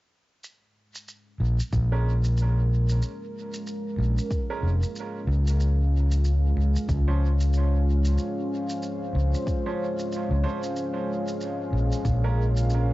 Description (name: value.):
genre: ambient dub.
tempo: 93 BPM.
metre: 4/4.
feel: swing 60% on 16ths.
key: Bb minor.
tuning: A4 = 443 Hz.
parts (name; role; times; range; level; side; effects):
deep dark ambient pad; sustained chords; 2.2-12.9 s; Ab3 to F5; -30 LUFS; equal; chorus, built-in reverb, cassette tape.
shaker; drums; 0.4-12.9 s; none; -44 LUFS; right 2 dB; studio reverb, dub echo.
overdriven fingered electric bass; bass; 1.4-12.9 s; F1 to Db2; -22 LUFS; equal; tube saturation.
electronic kick drum; drums; 1.7-12.2 s; none; -29 LUFS; equal; overdrive, studio reverb.
bright upright piano; stabs; 1.9-12.4 s; F3 to C5; -37 LUFS; right 6 dB; cassette tape, dub echo.
room: digital ambience.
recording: home recording on cassette, nothing above 7.6 kHz.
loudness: -23 LUFS.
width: side -18 dB against mid.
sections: 0.4-12.9 A section.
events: none.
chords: 0.4 Bbm7; 5.6 Dbmaj7; 10.8 Bbm7.